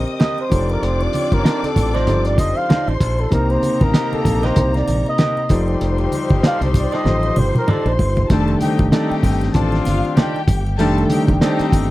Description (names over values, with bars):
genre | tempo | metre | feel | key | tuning
lush 1970s-style soul | 96 BPM | 4/4 | swing 58% on 16ths | unclear | A4 = 440 Hz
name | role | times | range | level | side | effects
dark studio string section | second line | 0.0-11.9 s | Bb3 to Eb6 | -27 LUFS | left 3 dB | none
warm concert grand piano | accompaniment | 0.0-11.9 s | C3 to Eb5 | -22 LUFS | equal | none
mellow horn section | stabs | 0.0-11.9 s | G3 to G4 | -25 LUFS | left 5 dB | none
modern bright fingered electric bass | bass | 0.0-11.9 s | F1 to C2 | -20 LUFS | equal | none
triangle | percussion | 0.1-11.9 s | none | -43 LUFS | right 4 dB | none
breathy flugelhorn | melody | 0.2-8.3 s | A4 to F5 | -22 LUFS | right 1 dB | none
electric guitar through a small old amp | riff | 0.2-11.6 s | Eb4 to Eb5 | -26 LUFS | right 8 dB | none
cloth-damped thuddy drum kit | drums | 0.2-11.9 s | hi-hat, kick drum, snare drum, toms | -17 LUFS | equal | none
congas | percussion | 0.2-11.9 s | none | -27 LUFS | right 2 dB | none
room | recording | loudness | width
little or no reverb | dry, close 1970s-style studio recording | -15 LUFS | side -17 dB against mid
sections
0.0-8.3 A section; 8.3-11.9 B section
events
flugelhorn solo 0.0-8.3; drum fill 7.1-8.3; grand piano solo 8.3-11.9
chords
0.0 Cm7; 0.5 F13; 3.3 Cm7; 5.5 F13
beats
0.21 | 0.83 1.45 2.08 2.70 | 3.32 3.94 4.57 5.19 | 5.81 6.43 7.06 7.68 | 8.30 8.93 9.55 10.18 | 10.80 11.42